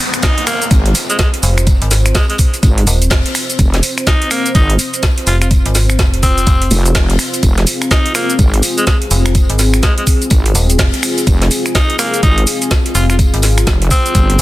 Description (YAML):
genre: bass house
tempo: 125 BPM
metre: 4/4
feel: swing 61% on 16ths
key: F minor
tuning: A4 = 440 Hz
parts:
  - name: dark analog pad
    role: sustained chords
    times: 0.6-14.4 s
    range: C4 to C5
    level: -21 LUFS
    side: left 2 dB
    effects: chorus, sidechain pumping
  - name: downlifter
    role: sound effects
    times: 0.0-3.6 s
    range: none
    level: -24 LUFS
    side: left 1 dB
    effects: none
  - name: garage drum kit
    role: drums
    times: 0.1-14.4 s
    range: finger snaps, hi-hat, shaker, snare drum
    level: -17 LUFS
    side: right 1 dB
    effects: overdrive
  - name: raspy alto saxophone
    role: melody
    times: 0.2-14.4 s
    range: Ab3 to F4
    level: -19 LUFS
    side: equal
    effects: tape echo
  - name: electronic kick drum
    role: drums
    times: 0.2-14.3 s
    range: none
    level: -12 LUFS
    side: equal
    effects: none
  - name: open jazz drum kit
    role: drums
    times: 0.2-14.4 s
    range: hi-hat, snare drum, tambourine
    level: -27 LUFS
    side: left 3 dB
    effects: sidechain pumping on hats, high-pass filter on hats, high-pass filter on snare, sidechain pumping on perc, high-pass filter on perc, high-pass filter on room
  - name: wobble bass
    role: bass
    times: 0.7-14.4 s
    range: F1 to Ab1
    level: -13 LUFS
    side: equal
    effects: chorus, tube saturation, sidechain pumping
  - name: metallic FM bass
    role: bass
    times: 1.4-14.4 s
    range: Eb1 to Ab1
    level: -13 LUFS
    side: equal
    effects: tube saturation, sidechain pumping
room: small room ambience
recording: dense, heavily limited modern master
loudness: -10 LUFS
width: side -17 dB against mid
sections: 0.0-14.4 A section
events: none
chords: 0.0 F5